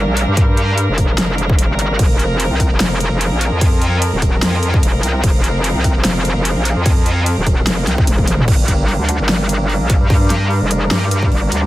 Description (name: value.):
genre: heavy wobble dubstep.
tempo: 148 BPM.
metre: 4/4.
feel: swing 55% on 16ths, half-time.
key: G minor.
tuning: A4 = 440 Hz.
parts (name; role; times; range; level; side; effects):
rich chamber string section; sustained chords; 0.0-11.7 s; F3 to Bb4; -22 LUFS; equal; sidechain pumping, low-pass filter.
metallic wobble bass; bass; 0.0-11.7 s; Eb1 to G2; -16 LUFS; equal; chorus, overdrive.
big-room dance drum kit; drums; 0.2-11.6 s; crash cymbal, hi-hat, snare drum, toms; -21 LUFS; equal; overdrive.
electronic kick drum; drums; 0.4-11.3 s; none; -14 LUFS; equal; none.
room: little or no reverb.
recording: none.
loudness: -13 LUFS.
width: side -16 dB against mid.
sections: 0.0-8.5 A section; 8.5-11.7 A section.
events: drop 0.0-8.5, 8.5-11.7; drum fill 8.1-8.5.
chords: 0.0 Gm; 2.0 Fsus4; 8.5 Gm.